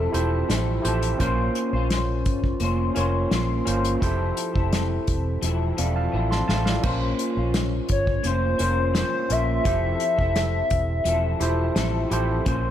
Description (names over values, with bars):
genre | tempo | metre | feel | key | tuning
indie pop, bedroom pop | 85 BPM | 4/4 | straight | F major | A4 = 440 Hz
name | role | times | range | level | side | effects
hollow clarinet-like synth lead | melody | 0.0-0.1, 7.9-12.1 s | A4 to E5 | -26 LUFS | left 2 dB | analog chorus, slapback echo
electric guitar through a small old amp | accompaniment | 0.0-12.7 s | F3 to C5 | -28 LUFS | left 4 dB | analog chorus, warbly pitch drift
overdriven tine electric piano | accompaniment | 0.0-12.7 s | Db4 to C6 | -29 LUFS | right 4 dB | none
vintage muted fingered electric bass | bass | 0.0-12.7 s | E1 to Bb1 | -25 LUFS | equal | none
unplugged drum kit | drums | 0.1-12.6 s | crash cymbal, hi-hat, kick drum, snare drum | -27 LUFS | equal | none
room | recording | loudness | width
light reverb, studio reverb | none | -21 LUFS | side -10 dB against mid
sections
0.0-12.7 A section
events
drum fill 6.1-6.8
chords
0.0 Fmaj7; 1.2 Bbmadd9; 4.0 Fmaj7; 6.8 Bbmadd9; 9.7 Fmaj7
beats
0.49 | 1.20 1.91 2.61 3.32 | 4.02 4.72 5.43 6.13 | 6.84 7.54 8.24 8.95 | 9.65 10.35 11.06 11.76 | 12.46